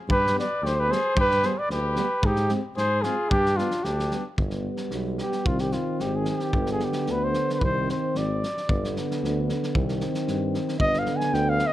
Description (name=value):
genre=balkan folk, Balkan brass band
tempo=112 BPM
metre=2/4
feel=straight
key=G phrygian dominant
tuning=A4 = 441 Hz
part: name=warm flugelhorn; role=melody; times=0.1-11.7 s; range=F4 to Ab5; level=-25 LUFS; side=equal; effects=none
part: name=clear trumpet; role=second line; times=0.1-4.2 s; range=D4 to B4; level=-33 LUFS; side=left 5 dB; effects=none
part: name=mellow tuba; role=bass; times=0.1-11.6 s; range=G1 to Ab2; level=-29 LUFS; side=equal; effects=none
part: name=loose indie drum kit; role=percussion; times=0.1-11.7 s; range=kick drum, snare drum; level=-30 LUFS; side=equal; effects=none
part: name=warm euphonium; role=accompaniment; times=0.3-11.7 s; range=B3 to C4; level=-32 LUFS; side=left 6 dB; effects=none
part: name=dark euphonium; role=accompaniment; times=0.4-11.7 s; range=D3 to Ab3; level=-31 LUFS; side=right 6 dB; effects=none
room=light reverb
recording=close, detailed microphones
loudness=-22 LUFS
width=side -14 dB against mid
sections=0.0-4.4 A section; 4.4-11.7 B section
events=flugelhorn solo 4.4-11.7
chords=0.1 G; 2.2 Ab; 3.3 G; 5.5 Cm; 6.5 G; 7.6 Cm; 8.7 G; 9.7 Cm; 10.8 G